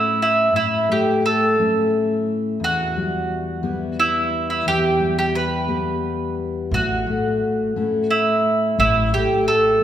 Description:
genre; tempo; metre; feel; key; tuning
acoustic folk duo or small band; 87 BPM; 3/4; straight; unclear; A4 = 438 Hz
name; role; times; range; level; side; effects
mandolin; melody; 0.0-9.8 s; E4 to B4; -19 LUFS; right 2 dB; none
fingerpicked steel-string acoustic guitar; accompaniment; 0.0-9.8 s; E2 to G4; -22 LUFS; left 3 dB; none
upright bass; bass; 6.7-9.1 s; A1; -27 LUFS; right 1 dB; none
room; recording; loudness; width
wet recital hall reverb, RT60 1.9 s; recorded in a church or concert hall; -17 LUFS; side -10 dB against mid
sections
0.0-9.8 A section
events
none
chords
0.0 A; 2.6 Em; 6.7 A

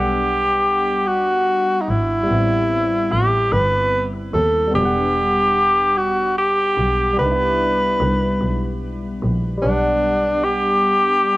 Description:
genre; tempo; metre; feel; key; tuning
slow six-eight R&B; 49 BPM (dotted quarters); 6/8; straight; E minor; A4 = 444 Hz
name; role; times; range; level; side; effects
breathy tenor saxophone; melody; 0.0-11.4 s; D4 to B4; -17 LUFS; equal; cassette tape
barky tine electric piano; accompaniment; 0.0-11.4 s; G3 to F#5; -25 LUFS; left 1 dB; overdrive, phaser, cassette tape
clear double bass; bass; 0.0-11.4 s; E1 to D#2; -23 LUFS; equal; none
room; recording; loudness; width
moderate spring reverb, RT60 1.4 s; home recording on cassette; -16 LUFS; side -18 dB against mid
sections
0.0-11.4 A section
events
none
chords
0.0 Em9 (rootless); 2.3 Am9; 4.7 Em7; 7.2 Cmaj9; 9.6 Em9 (rootless)

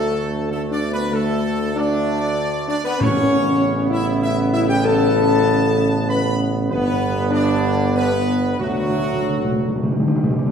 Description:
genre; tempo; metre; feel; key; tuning
classical; 97 BPM; 3/4; straight; D major; A4 = 441 Hz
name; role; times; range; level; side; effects
clear trumpet section; melody; 0.0-10.2 s; F#4 to B5; -25 LUFS; equal; none
clear trombone section; sustained chords; 0.0-10.2 s; C#3 to B3; -26 LUFS; right 1 dB; none
mellow French horn section; sustained chords; 0.0-10.2 s; F#3 to B4; -22 LUFS; left 3 dB; none
mellow tuba; bass; 0.0-10.2 s; G1 to D2; -21 LUFS; right 2 dB; none
timpani; percussion; 3.0-3.9, 8.6-10.5 s; A2 to D3; -21 LUFS; equal; none
room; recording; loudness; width
wet recital hall reverb, RT60 1.5 s; heard from further back in the room; -17 LUFS; side -7 dB against mid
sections
0.0-10.5 A section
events
timpani fill 8.6-10.5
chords
0.0 D5; 3.0 Aadd9; 6.7 G; 8.6 D

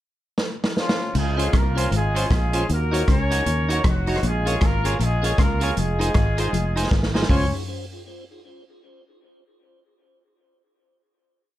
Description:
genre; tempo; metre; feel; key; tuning
ska; 156 BPM; 4/4; swing 61% on 8ths; Db major; A4 = 440 Hz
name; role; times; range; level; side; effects
vintage drum kit; drums; 0.4-7.4 s; crash cymbal, hi-hat, kick drum, rim click, snare drum, toms; -23 LUFS; equal; none
mellow horn section; melody; 0.8-7.5 s; F3 to Db5; -26 LUFS; equal; none
electric guitar at the edge of break-up; riff; 1.1-7.1 s; F2 to Eb3; -31 LUFS; left 4 dB; none
fingered electric bass; bass; 1.1-7.5 s; F1 to Eb2; -23 LUFS; equal; none
semi-hollow electric guitar; accompaniment; 1.4-7.4 s; Db4 to Db5; -29 LUFS; right 2 dB; none
tonewheel organ; stabs; 1.4-7.5 s; Db4 to Db5; -32 LUFS; left 2 dB; slow rotary speaker, dub echo
room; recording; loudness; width
light reverb; none; -19 LUFS; side -14 dB against mid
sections
0.0-1.1 pickup bar; 1.1-7.3 head; 7.3-8.8 final chord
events
drum fill 0.4-1.1, 6.9-7.3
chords
0.0 N.C.; 1.1 Dbmaj7; 2.7 Ebm7; 4.2 Bbm7; 5.8 Fm7; 7.3 Dbmaj7

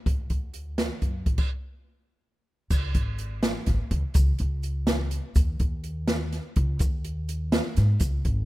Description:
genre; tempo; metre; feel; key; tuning
progressive instrumental, band music in an uneven meter; 249 BPM (eighths); 11/8; straight; unclear; A4 = 439 Hz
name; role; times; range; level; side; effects
upright bass; bass; 0.1-8.4 s; G#1 to G#2; -27 LUFS; equal; none
open jazz drum kit; drums; 0.1-8.4 s; crash cymbal, hi-hat, kick drum, snare drum; -25 LUFS; equal; none
tube shaker; percussion; 2.7-8.2 s; none; -42 LUFS; right 3 dB; none
room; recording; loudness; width
little or no reverb; rough home demo mix; -24 LUFS; side -17 dB against mid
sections
0.0-2.7 A section; 2.7-8.4 B section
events
stop 1.4-2.7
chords
none

